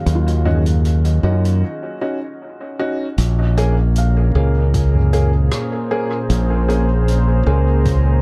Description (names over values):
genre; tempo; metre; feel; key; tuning
ambient dub; 77 BPM; 4/4; swing 53% on 16ths; Bb minor; A4 = 440 Hz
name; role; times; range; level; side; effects
warm analog pad; sustained chords; 0.0-8.2 s; Bb2 to F5; -27 LUFS; equal; chorus
felt-muted upright piano; arpeggios; 0.0-8.2 s; F4 to F5; -36 LUFS; equal; tape echo
modern bright fingered electric bass; bass; 0.1-8.2 s; Bb1 to Gb2; -17 LUFS; equal; none
soft-mallet drum kit; drums; 0.1-8.0 s; hi-hat, rim click, toms; -28 LUFS; equal; dub echo
dark upright piano; stabs; 0.5-8.2 s; Bb3 to Ab4; -26 LUFS; equal; dub echo
drifting glass-harmonics texture; texture; 3.7-8.2 s; Bb4; -38 LUFS; equal; chorus, built-in reverb
electronic kick drum; drums; 4.7-8.0 s; none; -22 LUFS; equal; none
room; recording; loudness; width
small room reverb; dark, warm production; -17 LUFS; mono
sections
0.0-3.2 A section; 3.2-8.2 B section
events
break 1.6-3.2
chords
0.0 Ebm7; 3.2 Bbm7